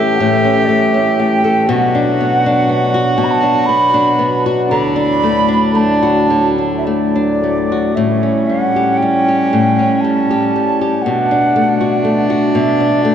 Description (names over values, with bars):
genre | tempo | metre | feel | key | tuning
celtic folk, Celtic slow air | 53-62 BPM | 3/4 | rubato | A mixolydian | A4 = 439 Hz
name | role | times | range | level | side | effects
baroque flute | melody | 0.0-13.1 s | D5 to B5 | -16 LUFS | right 3 dB | none
warm cello | second line | 0.0-13.1 s | C#4 to G4 | -18 LUFS | equal | slapback echo
flamenco guitar | accompaniment | 0.0-13.1 s | A2 to A4 | -15 LUFS | left 2 dB | none
pedal harmonium | sustained chords | 0.0-13.1 s | D2 to D4 | -23 LUFS | right 1 dB | none
room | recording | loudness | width
wet cathedral reverb, RT60 5.6 s | dark, warm production | -11 LUFS | side -9 dB against mid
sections
0.0-8.0 A section; 8.0-13.1 B section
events
none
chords
0.0 A; 1.7 Bm; 4.7 D; 8.0 A7; 11.1 Bm7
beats
0.68 | 1.69 2.69 3.69 | 4.72 5.77 6.87 | 7.97 9.01 10.04 | 11.06 12.06 13.05